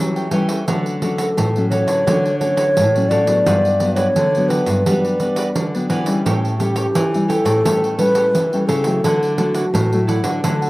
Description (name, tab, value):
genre	samba and choro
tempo	86 BPM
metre	4/4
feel	straight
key	D major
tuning	A4 = 440 Hz
part	breathy mellow alto flute	melody	0.0-10.7 s	D4 to D5	-18 LUFS	equal	slapback echo
part	nylon-string guitar	accompaniment	0.0-10.7 s	G2 to E4	-22 LUFS	left 2 dB	none
part	nylon-string guitar	bass	0.0-10.7 s	G2 to A3	-21 LUFS	equal	none
part	cavaquinho	accompaniment	0.2-10.7 s	E4 to G5	-28 LUFS	right 3 dB	slapback echo
part	pandeiro	percussion	0.2-10.7 s	none	-23 LUFS	right 2 dB	none
room	little or no reverb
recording	recorded outdoors, with no room sound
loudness	-15 LUFS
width	side -19 dB against mid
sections	0.0-10.7 A section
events	none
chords	0.0 A7; 0.7 Dmaj7; 3.5 Gmaj7; 6.3 A7; 9.0 Dadd9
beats	| 0.68 1.38 2.07 2.77 | 3.47 4.17 4.86 5.56 | 6.26 6.95 7.65 8.35 | 9.05 9.74 10.44